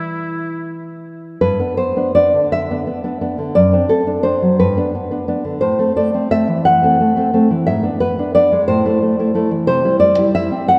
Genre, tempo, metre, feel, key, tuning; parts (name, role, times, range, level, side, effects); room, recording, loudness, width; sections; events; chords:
romantic duo for oboe and classical guitar; 48-61 BPM (dotted quarters); 6/8; rubato; G major; A4 = 440 Hz
warm oboe; melody; 0.0-1.0 s; E4; -31 LUFS; equal
nylon-string guitar; accompaniment; 0.0-10.8 s; F#2 to F#5; -16 LUFS; equal
wet church reverb, RT60 3.4 s; recorded in a church or concert hall; -16 LUFS; mono
0.0-1.4 A section; 1.4-10.8 B section
0.0 Em; 1.4 G (rootless); 3.5 D7/F#; 4.6 G; 5.6 Am; 7.7 G#dim; 8.7 Am; 9.7 C